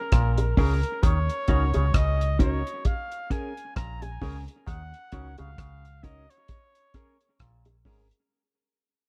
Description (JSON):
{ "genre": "roots reggae", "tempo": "66 BPM", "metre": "4/4", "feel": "swing 57% on 16ths", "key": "unclear", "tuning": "A4 = 441 Hz", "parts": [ { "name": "warm flugelhorn", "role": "melody", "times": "0.0-7.4 s", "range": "Bb4 to Bb5", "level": "-36 LUFS", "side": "equal", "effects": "tape echo" }, { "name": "clav", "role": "riff", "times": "0.1-8.0 s", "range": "Ab2 to Eb3", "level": "-38 LUFS", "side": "equal", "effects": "none" }, { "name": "deep dub fingered electric bass", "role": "bass", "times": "0.1-8.1 s", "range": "Ab1 to Eb2", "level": "-29 LUFS", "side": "equal", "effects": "none" }, { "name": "cloth-damped thuddy drum kit", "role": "drums", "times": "0.1-8.3 s", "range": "hi-hat, kick drum, rim click", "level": "-27 LUFS", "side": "equal", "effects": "none" }, { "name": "dark upright piano", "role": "stabs", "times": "0.4-8.0 s", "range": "Db4 to Db5", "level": "-42 LUFS", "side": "equal", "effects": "none" }, { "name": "bongos", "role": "percussion", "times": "0.4-8.1 s", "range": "none", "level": "-38 LUFS", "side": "equal", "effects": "none" }, { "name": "clean electric guitar", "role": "accompaniment", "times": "0.6-8.1 s", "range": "Db4 to Bb4", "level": "-36 LUFS", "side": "equal", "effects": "tape echo" } ], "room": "little or no reverb", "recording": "dark, warm production", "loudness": "-26 LUFS", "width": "mono", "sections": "0.0-8.3 A section", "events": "fade-out 0.0-8.3", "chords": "0.0 Bbm7; 1.0 Ebm7; 2.9 Bbm7; 4.7 Ebm7; 6.5 Bbm7" }